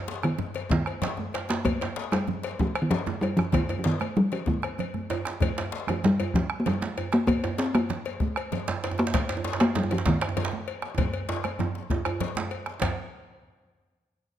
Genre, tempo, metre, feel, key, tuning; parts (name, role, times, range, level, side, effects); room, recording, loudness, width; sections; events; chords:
west african traditional, West African drum ensemble; 129 BPM (dotted quarters); 12/8; straight; Eb major pentatonic; A4 = 440 Hz
talking drum; melody; 0.0-12.5 s; Eb3 to C4; -25 LUFS; equal
congas; percussion; 0.1-13.0 s; -35 LUFS; right 7 dB
djembe; percussion; 0.1-13.0 s; -36 LUFS; left 5 dB
bombo; percussion; 0.2-13.0 s; -31 LUFS; left 1 dB
cowbell; percussion; 0.2-13.0 s; -36 LUFS; left 7 dB
djembe; percussion; 0.7-13.0 s; -32 LUFS; right 5 dB
light reverb; close, detailed microphones; -25 LUFS; side -11 dB against mid
0.0-12.8 A section; 12.8-14.4 B section
speeding up 0.0-14.4; drum fill 4.6-5.4, 11.0-12.8